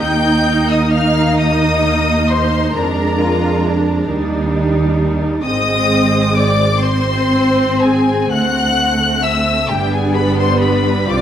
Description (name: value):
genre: classical, slow romantic movement for string orchestra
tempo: 39-46 BPM (dotted quarters)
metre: 6/8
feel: rubato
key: unclear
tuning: A4 = 441 Hz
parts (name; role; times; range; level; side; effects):
- warm symphonic violin section; melody; 0.0-11.2 s; G5 to G6; -19 LUFS; left 4 dB; none
- warm symphonic violin section; second line; 0.0-11.2 s; G4 to G5; -21 LUFS; left 2 dB; none
- warm symphonic viola section; accompaniment; 0.0-11.2 s; G3 to Eb4; -17 LUFS; right 1 dB; none
- dark studio double bass section; bass; 0.0-11.2 s; G1 to F2; -18 LUFS; right 2 dB; none
- rich symphonic cello section; bass; 0.0-11.2 s; C4 to F4; -22 LUFS; right 1 dB; none
room: wet scoring stage reverb, RT60 1.4 s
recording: none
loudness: -12 LUFS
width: side -10 dB against mid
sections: 0.0-11.2 A section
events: none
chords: 0.0 Eb5; 2.7 Bb7/F; 4.1 Eb; 5.4 Ab; 8.3 D7; 9.7 G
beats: | 0.01 1.39 | 2.75 4.09 | 5.44 6.82 | 8.32 9.70 | 11.10